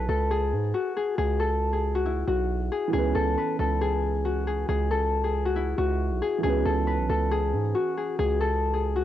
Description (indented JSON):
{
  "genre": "hip hop, trap",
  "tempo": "137 BPM",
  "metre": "4/4",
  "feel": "half-time",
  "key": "C# minor",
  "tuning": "A4 = 440 Hz",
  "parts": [
    { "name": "Celtic harp", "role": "melody", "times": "0.0-9.0 s", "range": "E4 to B4", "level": "-26 LUFS", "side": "left 4 dB", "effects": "low-pass filter, cassette tape" },
    { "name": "distorted 808-style bass", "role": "bass", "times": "0.0-9.0 s", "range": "B1 to G#2", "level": "-27 LUFS", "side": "right 2 dB", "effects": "distortion" },
    { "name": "dark concert grand piano", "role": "accompaniment", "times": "2.9-9.0 s", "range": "E3 to B4", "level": "-33 LUFS", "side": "right 10 dB", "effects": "low-pass filter, cassette tape" }
  ],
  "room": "studio reverb",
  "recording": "home recording on cassette",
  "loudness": "-24 LUFS",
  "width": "side -12 dB against mid",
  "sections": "0.0-9.0 A section",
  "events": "none",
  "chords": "0.0 C#5"
}